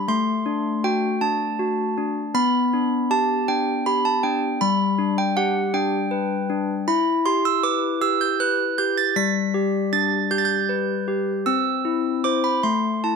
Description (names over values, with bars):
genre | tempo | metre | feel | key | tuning
classical, lullaby for handbells | 53 BPM (dotted quarters) | 6/8 | straight | G major, E minor from 6.9 s | A4 = 440 Hz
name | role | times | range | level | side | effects
handbells | solo | 0.0-13.2 s | G3 to B6 | -19 LUFS | equal | none
room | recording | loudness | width
moderate plate reverb, RT60 2.6 s | dark, warm production | -19 LUFS | side -5 dB against mid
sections
0.0-13.2 A section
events
none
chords
0.1 D7/A; 2.3 G/B; 4.6 G; 6.9 Em; 9.2 G; 11.5 C; 12.6 Am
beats
| 0.08 1.22 | 2.35 3.49 | 4.62 5.74 | 6.88 8.02 | 9.17 10.31 | 11.46 12.64